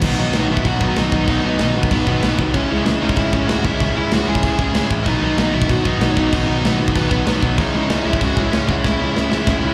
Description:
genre	punk rock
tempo	190 BPM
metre	4/4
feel	straight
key	unclear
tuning	A4 = 439 Hz
part	dark smooth lead guitar	melody	0.0-9.7 s	B3 to G#5	-26 LUFS	equal	overdrive
part	crunchy overdriven guitar	riff	0.0-9.7 s	B2 to E4	-23 LUFS	equal	slapback echo
part	distorted electric guitar	riff	0.0-9.7 s	B2 to C#4	-25 LUFS	equal	overdrive, slapback echo
part	fuzz picked electric bass	bass	0.0-9.7 s	A1 to C#2	-25 LUFS	equal	overdrive
part	tight metal drum kit	drums	0.0-9.6 s	crash cymbal, kick drum, snare drum	-24 LUFS	equal	none
room	light reverb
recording	live gig heard through the venue's PA, club reverb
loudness	-18 LUFS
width	mono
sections	0.0-9.7 A section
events	drum fill 8.8-9.7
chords	0.0 B; 2.5 C#m; 5.1 B; 7.6 C#m

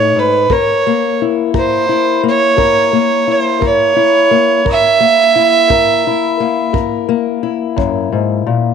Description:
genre	acoustic country blues, solo or duo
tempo	58 BPM (dotted quarters)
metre	12/8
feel	straight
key	F# mixolydian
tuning	A4 = 441 Hz
part	warm fiddle	melody	0.0-6.7 s	B4 to E5	-12 LUFS	right 5 dB	none
part	fingerpicked old ladder-braced acoustic guitar	accompaniment	0.0-8.7 s	F#2 to A#4	-15 LUFS	left 10 dB	none
part	kick drum	drums	0.5-7.9 s	none	-21 LUFS	right 3 dB	none
room	moderate echo chamber reverb, RT60 2.9 s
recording	1960s-style stereo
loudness	-10 LUFS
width	side -6 dB against mid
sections	0.0-8.7 A section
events	none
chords	0.5 F#7

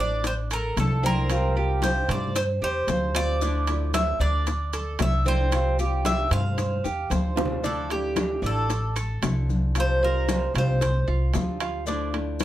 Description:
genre	latin, Cuban son and guajira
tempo	113 BPM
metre	4/4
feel	straight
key	D minor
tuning	A4 = 439 Hz
part	Cuban tres	melody	0.0-11.1 s	G4 to F5	-28 LUFS	right 1 dB	none
part	nylon-string guitar	accompaniment	0.0-12.4 s	C3 to F4	-33 LUFS	left 2 dB	none
part	Cuban tres	arpeggios	0.0-12.1 s	C4 to F5	-31 LUFS	right 4 dB	none
part	upright bass	bass	0.0-12.4 s	A1 to G2	-26 LUFS	equal	none
part	bongos	percussion	0.2-12.4 s	none	-32 LUFS	left 8 dB	none
part	congas	percussion	0.2-12.4 s	none	-32 LUFS	left 2 dB	none
part	maracas	percussion	0.2-12.4 s	none	-41 LUFS	left 7 dB	none
part	timbales	percussion	0.2-12.4 s	none	-32 LUFS	right 6 dB	none
room	light reverb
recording	none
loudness	-22 LUFS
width	side -13 dB against mid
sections	0.0-7.6 A section; 7.6-12.4 B section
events	drum fill 6.8-7.6; Cuban tres solo 7.6-12.4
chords	0.0 Dmadd9; 1.3 Csus4; 3.4 Dmadd9; 5.5 Csus4; 7.6 Dmadd9; 9.8 Csus4; 11.9 Dmadd9

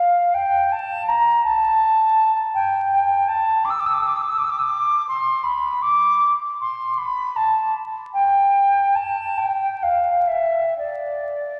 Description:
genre	classical, free, expressive piece for unaccompanied flute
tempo	58-86 BPM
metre	3/4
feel	rubato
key	D dorian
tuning	A4 = 441 Hz
part	silver concert flute	solo	0.0-11.6 s	D5 to E6	-20 LUFS	equal	none
room	wet church reverb, RT60 3.5 s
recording	vinyl crackle, nothing above 10.4 kHz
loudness	-20 LUFS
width	mono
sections	0.0-11.6 A section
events	none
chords	none

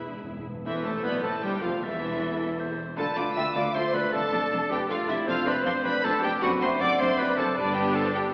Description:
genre	quick classical-period movement for symphony orchestra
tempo	156 BPM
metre	3/4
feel	straight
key	A minor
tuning	A4 = 440 Hz
part	warm symphonic violin section	melody	0.0-8.2 s	D5 to E6	-34 LUFS	equal	none
part	clear clarinet	second line	0.0-8.2 s	D4 to E5	-33 LUFS	equal	none
part	rich chamber violin section	second line	0.0-8.3 s	D4 to B5	-36 LUFS	equal	none
part	rich chamber viola section	accompaniment	0.0-8.3 s	E3 to G#4	-36 LUFS	equal	none
part	rich symphonic cello section	bass	0.0-8.3 s	E2 to D3	-39 LUFS	equal	none
part	warm chamber double bass section	bass	0.0-8.3 s	E1 to D2	-40 LUFS	equal	none
part	timpani	percussion	0.0-2.4, 7.6-8.1 s	E2 to C3	-46 LUFS	equal	none
part	mellow French horn section	sustained chords	0.1-8.3 s	E3 to F4	-37 LUFS	equal	none
part	clear oboe	second line	0.7-8.3 s	A4 to D5	-36 LUFS	equal	none
part	mellow hollow concert flute	second line	0.7-8.3 s	G4 to G5	-36 LUFS	equal	none
room	wet scoring stage reverb, RT60 1.8 s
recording	heard from further back in the room, AM radio sound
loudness	-26 LUFS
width	mono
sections	0.7-8.3 A section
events	timpani fill 0.0-0.7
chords	0.0 E; 0.7 Am/E; 3.0 Dm; 4.1 Dm/F; 5.3 Dm7/F; 6.4 D7/F#; 7.6 G

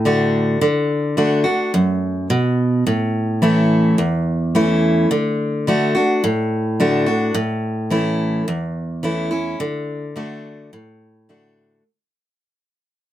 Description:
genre	country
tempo	107 BPM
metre	4/4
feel	straight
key	D major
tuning	A4 = 440 Hz
part	picked steel-string acoustic guitar	solo	0.0-11.8 s	E2 to F#4	-16 LUFS	equal	none
room	moderate studio reverb, RT60 0.5 s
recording	none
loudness	-16 LUFS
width	side -12 dB against mid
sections	0.0-7.4 A section; 7.4-11.8 B section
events	fade-out 7.4-11.8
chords	0.0 D; 2.9 A; 5.1 D; 7.4 A; 9.6 D

